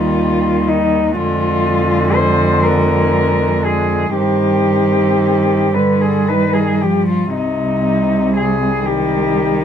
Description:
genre	classical, lyrical piece for cello ensemble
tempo	37-43 BPM (dotted quarters)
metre	6/8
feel	rubato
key	C minor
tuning	A4 = 444 Hz
part	muted cello	melody	0.0-9.6 s	Eb4 to C5	-17 LUFS	left 4 dB	none
part	muted cello	second line	0.0-9.6 s	G3 to C4	-21 LUFS	right 8 dB	none
part	muted cello	accompaniment	0.0-9.6 s	C3 to F3	-19 LUFS	left 3 dB	none
part	muted cello	bass	0.0-9.6 s	C2 to G2	-18 LUFS	right 3 dB	none
room	little or no reverb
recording	close, detailed microphones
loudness	-13 LUFS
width	side -8 dB against mid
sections	0.0-9.6 A section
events	none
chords	0.0 Eb; 1.2 Ddim/F; 4.2 Cm/G; 5.8 G5; 7.3 Cm

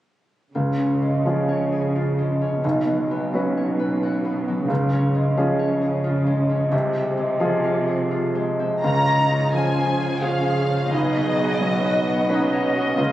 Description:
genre	cinematic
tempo	87 BPM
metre	3/4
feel	rubato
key	Db major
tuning	A4 = 443 Hz
part	concert harp	arpeggios	0.5-13.1 s	Cb3 to Gb5	-24 LUFS	left 2 dB	none
part	muted symphonic cello section	bass	0.5-13.1 s	Cb3 to Db3	-26 LUFS	right 2 dB	none
part	clear grand piano	accompaniment	0.6-13.1 s	Cb2 to Cb5	-24 LUFS	right 1 dB	none
part	muted symphonic violin section	melody	8.8-13.0 s	Eb5 to Bb5	-24 LUFS	left 1 dB	none
part	muted symphonic viola section	accompaniment	8.8-13.1 s	F3 to F4	-28 LUFS	right 1 dB	none
part	muted chamber violin section	second line	8.9-13.1 s	F4 to Eb5	-28 LUFS	right 1 dB	none
room	moderate concert hall reverb, RT60 1.8 s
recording	recorded on a phone in the room, club reverb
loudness	-19 LUFS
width	side -14 dB against mid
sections	0.5-8.8 A section; 8.8-13.1 B section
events	none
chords	0.5 Db; 2.6 Cbsus2; 4.7 Db; 6.7 Fm/C; 8.8 Db; 10.9 Cbsus2

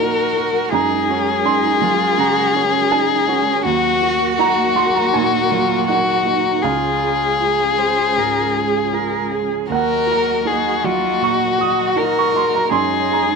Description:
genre	neoclassical piano and strings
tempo	80 BPM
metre	4/4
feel	rubato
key	Eb dorian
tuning	A4 = 441 Hz
part	rich violin	melody	0.0-13.4 s	Gb4 to Bb4	-17 LUFS	left 7 dB	none
part	warm cello	second line	0.0-13.4 s	Db4 to C5	-24 LUFS	right 12 dB	slapback echo
part	warm baby grand piano	accompaniment	0.0-13.4 s	Db2 to Eb6	-20 LUFS	right 11 dB	none
part	dark studio string section	sustained chords	0.0-13.4 s	Gb3 to Eb5	-28 LUFS	left 1 dB	none
room	light reverb, studio reverb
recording	1960s-style stereo with parts hard left and right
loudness	-15 LUFS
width	side -4 dB against mid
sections	0.0-13.4 A section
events	none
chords	0.0 Ebm; 0.7 Gbadd9; 3.6 Ebm; 6.6 Db; 9.7 Ebm; 12.7 Gbadd9

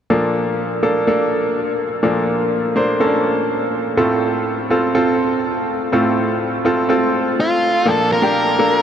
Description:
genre	pop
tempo	124 BPM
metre	4/4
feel	straight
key	Bb major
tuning	A4 = 440 Hz
part	bright grand piano	accompaniment	0.1-8.8 s	A2 to C5	-16 LUFS	equal	none
part	octave-fuzz lead guitar	melody	7.4-8.8 s	F4 to Bb4	-16 LUFS	equal	distortion
room	wet huge ambient reverb, RT60 6.8 s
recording	dreamy mix soaked in reverb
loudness	-15 LUFS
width	side -8 dB against mid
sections	0.1-7.9 A section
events	none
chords	0.1 Bbmaj7; 4.0 F/A; 7.9 Bbmaj7

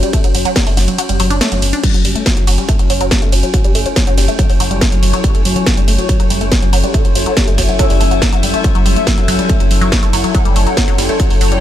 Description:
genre	driving peak-time techno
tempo	141 BPM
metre	4/4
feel	straight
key	F# phrygian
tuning	A4 = 440 Hz
part	resonant blip pluck	riff	0.0-11.6 s	F#3 to D4	-19 LUFS	equal	phaser, tube saturation, sidechain pumping, ping-pong delay
part	warm sub bass	bass	0.0-11.6 s	F#1	-18 LUFS	equal	sidechain pumping, low-pass filter
part	metallic inharmonic drone	drone	0.0-11.6 s	F#3 to C#4	-22 LUFS	left 3 dB	chorus, built-in reverb, phaser, sidechain pumping
part	techno drum kit	drums	0.0-11.6 s	crash cymbal, hi-hat, ride cymbal, snare drum	-19 LUFS	equal	none
part	electronic kick drum	drums	0.1-11.3 s	none	-14 LUFS	equal	distortion
part	granular cloud pad	texture	3.0-11.6 s	E4 to E5	-21 LUFS	left 2 dB	built-in reverb, sidechain pumping
room	little or no reverb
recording	none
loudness	-11 LUFS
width	side -11 dB against mid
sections	0.0-1.8 A section; 1.8-11.6 A section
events	drop 0.0-1.8, 1.8-11.6; kick drops out 1.0-1.8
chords	0.0 F#5; 1.8 F#m

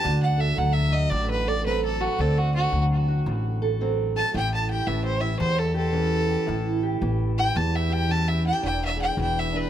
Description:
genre	acoustic country blues, solo or duo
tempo	112 BPM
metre	4/4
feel	swing 64% on 8ths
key	unclear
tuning	A4 = 439 Hz
part	rich fiddle	melody	0.0-9.7 s	F#4 to A5	-26 LUFS	right 1 dB	tape echo
part	fingerpicked steel-string acoustic guitar	accompaniment	0.0-9.7 s	E2 to A4	-28 LUFS	right 2 dB	none
part	upright bass	bass	0.1-9.6 s	E1 to E2	-25 LUFS	equal	none
room	light reverb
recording	close, detailed microphones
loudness	-22 LUFS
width	side -10 dB against mid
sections	0.0-9.7 A section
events	fiddle solo 0.0-9.7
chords	0.1 D7; 4.3 A7; 8.6 E7

